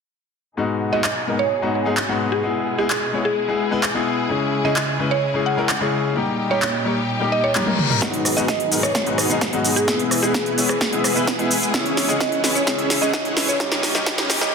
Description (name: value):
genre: EDM, festival progressive house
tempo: 129 BPM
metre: 4/4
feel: straight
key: G# minor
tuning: A4 = 443 Hz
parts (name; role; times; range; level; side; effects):
- bright concert grand piano; accompaniment; 0.6-14.5 s; G#2 to C#5; -23 LUFS; left 4 dB; sidechain pumping, digital delay
- clear symphonic string section; sustained chords; 0.6-14.5 s; A#2 to G#4; -28 LUFS; equal; sidechain pumping, low-pass filter
- mallet-like synth pluck; melody; 0.9-14.5 s; G#4 to F#5; -25 LUFS; right 2 dB; chorus, digital delay
- big-room dance drum kit; drums; 1.0-14.5 s; handclaps, hi-hat, rim click, shaker, snare drum, toms; -22 LUFS; right 1 dB; none
- reverse cymbal and riser; sound effects; 7.5-14.5 s; none; -30 LUFS; left 2 dB; none
- dense compressed supersaw; riff; 8.0-14.5 s; B3 to G5; -24 LUFS; right 1 dB; sidechain pumping, low-pass filter, digital delay
- electronic kick drum; drums; 8.0-14.2 s; none; -30 LUFS; right 1 dB; none
room: moderate scoring stage reverb, RT60 1.9 s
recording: dense, heavily limited modern master, high-pass filter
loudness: -18 LUFS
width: side -5 dB against mid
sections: 0.6-8.0 A section; 8.0-14.5 B section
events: filter sweep on string section 0.6-8.0; reverse cymbal 7.5-8.0; drum fill 7.6-8.0, 8.0-14.5; build-up 8.0-14.5; filter sweep on supersaw synth 8.0-14.5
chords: 0.6 G#m7; 2.4 E; 4.3 C#m; 6.2 D#; 8.0 G#m7; 9.9 E; 11.7 C#m; 13.6 D#